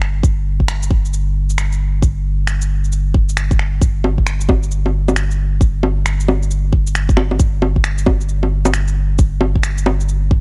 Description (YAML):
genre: future garage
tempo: 134 BPM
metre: 4/4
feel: swing 64% on 16ths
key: unclear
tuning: A4 = 437 Hz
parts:
  - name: warm sub bass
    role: bass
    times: 0.0-10.4 s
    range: G1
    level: -20 LUFS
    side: equal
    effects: sidechain pumping
  - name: electronic finger snaps, shaker and bongos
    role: drums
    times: 0.0-10.2 s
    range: none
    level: -22 LUFS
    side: equal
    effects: none
  - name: electronic kick drum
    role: drums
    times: 0.2-10.4 s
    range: none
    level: -16 LUFS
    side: equal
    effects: none
room: little or no reverb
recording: none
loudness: -17 LUFS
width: mono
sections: 0.0-10.4 A section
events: none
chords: none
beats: | 0.24 0.69 1.13 1.58 | 2.03 2.48 2.92 3.37 | 3.82 4.27 4.72 5.16 | 5.61 6.06 6.51 6.96 | 7.40 7.85 8.30 8.75 | 9.19 9.64 10.09